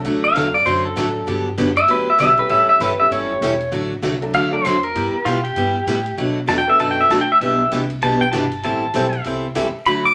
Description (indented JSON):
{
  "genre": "country, western swing",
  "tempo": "196 BPM",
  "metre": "4/4",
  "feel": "swing 61% on 8ths",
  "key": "G major",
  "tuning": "A4 = 440 Hz",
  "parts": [
    { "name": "clear upright piano", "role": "accompaniment", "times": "0.0-4.6, 6.7-9.1 s", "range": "F#3 to A4", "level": "-30 LUFS", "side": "equal", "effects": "none" },
    { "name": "picked steel-string acoustic guitar", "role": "accompaniment", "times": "0.0-10.1 s", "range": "B2 to A4", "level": "-24 LUFS", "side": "equal", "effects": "none" },
    { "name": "upright bass", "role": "bass", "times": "0.0-10.1 s", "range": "E1 to B2", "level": "-31 LUFS", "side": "equal", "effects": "none" },
    { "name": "vintage drum kit", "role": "drums", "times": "0.0-9.9 s", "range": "hi-hat, ride cymbal, snare drum", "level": "-36 LUFS", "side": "equal", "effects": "none" },
    { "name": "pedal steel guitar", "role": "second line", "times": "0.2-10.1 s", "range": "F4 to D6", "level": "-19 LUFS", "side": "equal", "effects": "none" }
  ],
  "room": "wet studio reverb, RT60 0.5 s",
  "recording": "vinyl crackle",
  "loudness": "-18 LUFS",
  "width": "mono",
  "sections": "0.0-10.1 A section",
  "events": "pedal steel guitar solo 0.0-10.1",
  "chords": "0.0 D; 1.3 Gmaj7; 2.5 A7; 3.7 D; 5.0 G6; 6.2 Bm7; 7.4 Em7/B; 8.6 Am7",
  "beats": "| 0.05 0.35 0.66 0.96 | 1.27 1.58 1.89 2.19 | 2.50 2.81 3.11 3.42 | 3.73 4.03 4.34 4.64 | 4.95 5.26 5.57 5.87 | 6.18 6.49 6.79 7.10 | 7.41 7.71 8.02 8.33 | 8.63 8.94 9.25 9.55 | 9.86"
}